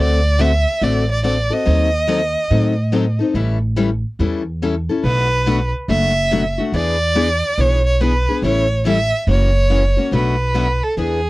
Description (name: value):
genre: acoustic string swing (jazz manouche)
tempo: 142 BPM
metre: 4/4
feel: swing 64% on 8ths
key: unclear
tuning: A4 = 440 Hz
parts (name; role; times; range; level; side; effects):
- warm violin; melody; 0.0-11.3 s; G#4 to E5; -19 LUFS; right 2 dB; none
- picked steel-string acoustic guitar; accompaniment; 0.0-11.2 s; B2 to A4; -20 LUFS; left 4 dB; none
- upright bass; bass; 0.0-11.3 s; F#1 to A2; -18 LUFS; right 1 dB; none
room: little or no reverb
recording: dry, close 1970s-style studio recording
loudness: -15 LUFS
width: side -19 dB against mid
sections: 0.0-11.3 A section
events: none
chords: 0.0 D7; 1.7 D#dim7; 3.4 A7; 5.0 Bm7; 6.7 E7; 8.4 A7; 9.3 F#7; 10.1 Bm7